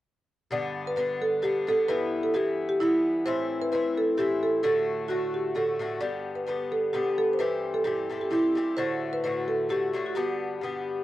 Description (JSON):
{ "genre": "celtic folk, Celtic waltz", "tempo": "130 BPM", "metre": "3/4", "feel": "swing 54% on 8ths", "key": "G major", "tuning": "A4 = 440 Hz", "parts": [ { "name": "marimba with medium mallets", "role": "melody", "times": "0.5-11.0 s", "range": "E4 to D5", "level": "-26 LUFS", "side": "right 1 dB", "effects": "none" }, { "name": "Irish bouzouki", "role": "accompaniment", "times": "0.5-11.0 s", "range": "G2 to G4", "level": "-31 LUFS", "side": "left 4 dB", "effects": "none" } ], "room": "moderate booth ambience, RT60 0.2 s", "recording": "dry, close 1970s-style studio recording", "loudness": "-25 LUFS", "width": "side -14 dB against mid", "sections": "0.5-11.0 A section", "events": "none", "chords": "0.5 G; 1.9 Em; 3.3 Am; 4.6 D; 6.0 G; 7.4 C; 8.8 D; 10.2 G" }